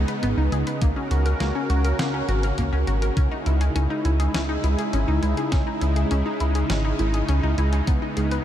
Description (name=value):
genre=synthwave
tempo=102 BPM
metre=4/4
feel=straight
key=C# dorian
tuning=A4 = 441 Hz
part: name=warm analog pad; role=sustained chords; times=0.0-8.4 s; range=C#3 to A#4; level=-26 LUFS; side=equal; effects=chorus, sidechain pumping, shimmer reverb
part: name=analog pluck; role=arpeggios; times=0.0-8.4 s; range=A#3 to B4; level=-29 LUFS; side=left 2 dB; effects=chorus, ping-pong delay, shimmer reverb
part: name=chorused synth bass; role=bass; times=0.0-8.4 s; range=G#1 to C#2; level=-22 LUFS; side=equal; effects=sidechain pumping
part: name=clean 12-bit digital drum machine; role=drums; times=0.1-8.4 s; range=hi-hat, snare drum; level=-34 LUFS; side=equal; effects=none
part: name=electronic kick drum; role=drums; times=0.8-8.0 s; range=none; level=-22 LUFS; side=equal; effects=none
room=light reverb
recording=none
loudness=-20 LUFS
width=side -11 dB against mid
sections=0.0-8.4 A section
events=none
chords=0.0 G#m; 0.8 F#/C#; 3.2 C#madd9; 7.9 G#m/C#